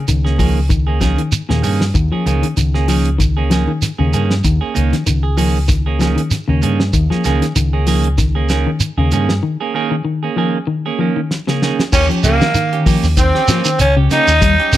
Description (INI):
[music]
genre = afrobeat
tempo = 96 BPM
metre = 4/4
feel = swing 55% on 16ths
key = Eb mixolydian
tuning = A4 = 439 Hz
[part]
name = electric guitar at the edge of break-up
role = arpeggios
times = 0.0-14.5 s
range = Bb2 to G3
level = -20 LUFS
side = left 4 dB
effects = none
[part]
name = picked electric bass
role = bass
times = 0.1-14.8 s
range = Db2 to Eb3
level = -16 LUFS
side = equal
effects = none
[part]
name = damped 70s drum kit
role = drums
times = 0.1-14.8 s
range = crash cymbal, hi-hat, kick drum, snare drum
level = -19 LUFS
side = equal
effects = none
[part]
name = shekere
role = percussion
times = 0.1-14.8 s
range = none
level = -19 LUFS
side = right 2 dB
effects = none
[part]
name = clean electric guitar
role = stabs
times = 0.2-14.8 s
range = Eb3 to Ab4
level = -21 LUFS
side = right 7 dB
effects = none
[part]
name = growling tenor saxophone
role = melody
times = 11.9-14.8 s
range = Bb3 to Eb4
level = -15 LUFS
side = equal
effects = none
[part]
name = growling tenor saxophone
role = second line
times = 12.0-14.8 s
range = Bb3 to Eb4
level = -22 LUFS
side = right 4 dB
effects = none
[sound]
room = light reverb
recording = none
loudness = -13 LUFS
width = side -13 dB against mid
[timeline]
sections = 0.0-11.9 A section; 11.9-14.8 B section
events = break 9.4-11.9; drum fill 11.3-11.9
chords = 0.0 Eb7sus4; 11.9 Eb7